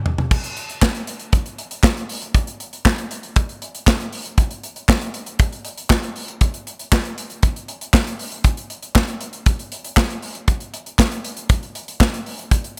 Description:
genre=funk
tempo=118 BPM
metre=4/4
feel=straight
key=none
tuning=none
part: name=modern studio drum kit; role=drums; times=0.1-12.8 s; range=crash cymbal, handclaps, hi-hat, kick drum, snare drum, toms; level=-20 LUFS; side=equal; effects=none
room=light reverb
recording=none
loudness=-21 LUFS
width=mono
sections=0.3-12.8 A section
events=drum fill 0.0-0.3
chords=none

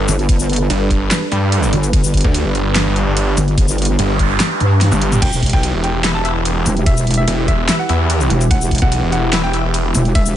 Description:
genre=heavy wobble dubstep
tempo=146 BPM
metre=4/4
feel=half-time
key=E minor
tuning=A4 = 440 Hz
part: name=supersaw pad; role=sustained chords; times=0.0-10.4 s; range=E3 to B4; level=-23 LUFS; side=right 1 dB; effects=sidechain pumping, low-pass filter
part: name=snarling distorted saw bass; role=bass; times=0.0-9.9 s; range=E1 to G2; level=-17 LUFS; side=equal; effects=distortion, overdrive
part: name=wobble bass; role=bass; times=0.1-10.4 s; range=E1 to G2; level=-15 LUFS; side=equal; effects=chorus, overdrive
part: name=big-room dance drum kit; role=drums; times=0.1-10.3 s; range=crash cymbal, handclaps, hi-hat, ride cymbal, shaker, snare drum, toms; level=-21 LUFS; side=equal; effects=overdrive, small room ambience
part: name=electronic kick drum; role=drums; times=0.3-10.2 s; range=none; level=-15 LUFS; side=equal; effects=small room ambience
part: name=noise sweep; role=sound effects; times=3.8-5.2 s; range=none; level=-24 LUFS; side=right 3 dB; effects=none
part: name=clear baby grand piano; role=melody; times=5.2-10.4 s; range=E5 to A5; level=-24 LUFS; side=equal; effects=dub echo
part: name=orchestra-hit-like synth stab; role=stabs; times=6.0-9.6 s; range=E4 to E5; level=-26 LUFS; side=left 2 dB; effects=built-in reverb, dub echo
room=little or no reverb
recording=nothing above 10.4 kHz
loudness=-13 LUFS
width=side -11 dB against mid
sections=0.0-10.4 A section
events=noise sweep 3.8-5.2; drum fill 4.8-5.2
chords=0.0 Gadd9; 5.2 Em

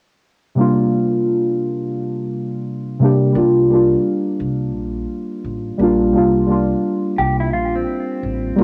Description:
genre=hip hop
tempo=86 BPM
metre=4/4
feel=swing 63% on 16ths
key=unclear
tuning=A4 = 439 Hz
part: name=muted felt-like synth keys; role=accompaniment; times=0.6-8.6 s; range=C3 to G4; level=-18 LUFS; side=equal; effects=chorus, phaser, cassette tape, plate reverb
part: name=upright bass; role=bass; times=3.4-8.6 s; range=A1 to C2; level=-26 LUFS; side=equal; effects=none
part: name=mellow electric guitar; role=second line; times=7.2-8.6 s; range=C4 to G4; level=-24 LUFS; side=equal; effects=phaser, cassette tape, tape echo, plate reverb
room=moderate booth ambience, RT60 0.2 s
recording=home recording on cassette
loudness=-18 LUFS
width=mono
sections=0.6-3.3 A section; 3.3-8.6 B section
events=none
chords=0.6 C9sus4

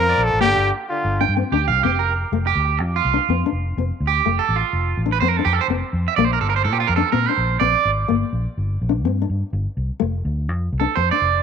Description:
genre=highlife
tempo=125 BPM (dotted quarters)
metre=12/8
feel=straight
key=F major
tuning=A4 = 440 Hz
part: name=clear trumpet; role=melody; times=0.0-1.2 s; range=F4 to Bb4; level=-19 LUFS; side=left 1 dB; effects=none
part: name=breathy tenor saxophone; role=second line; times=0.0-1.2 s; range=D3 to F3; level=-29 LUFS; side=left 11 dB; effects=none
part: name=nylon-string guitar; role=accompaniment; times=0.0-11.4 s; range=A3 to D4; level=-24 LUFS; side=left 13 dB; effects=none
part: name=electric guitar at the edge of break-up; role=arpeggios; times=0.0-7.9, 10.8-11.4 s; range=F4 to G5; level=-20 LUFS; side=right 11 dB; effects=none
part: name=vintage muted fingered electric bass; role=bass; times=0.0-11.4 s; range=F1 to Bb2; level=-22 LUFS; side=equal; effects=none
room=moderate spring reverb, RT60 2.4 s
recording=1960s-style stereo with parts hard left and right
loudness=-17 LUFS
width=side -7 dB against mid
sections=0.0-2.3 A section; 2.3-11.4 B section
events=clean electric guitar solo 2.3-11.4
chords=0.4 Gm7; 2.3 F; 6.2 Bb; 8.1 Gm; 10.0 F

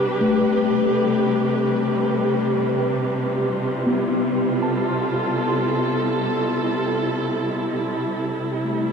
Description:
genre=ambient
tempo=70 BPM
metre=3/4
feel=straight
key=C major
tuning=A4 = 440 Hz
part: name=dark chamber string section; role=sustained chords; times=0.0-8.9 s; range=C3 to B4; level=-21 LUFS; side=right 1 dB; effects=none
part: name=muted felt-like synth keys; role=arpeggios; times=0.2-8.9 s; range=A3 to C6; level=-24 LUFS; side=left 4 dB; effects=chorus, diffuse ambient delay
room=wet concert hall reverb, RT60 2.2 s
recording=cassette tape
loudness=-19 LUFS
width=side -6 dB against mid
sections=0.0-8.0 A section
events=none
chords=0.0 Cmaj7(no3); 2.8 Dm7/C; 8.0 C

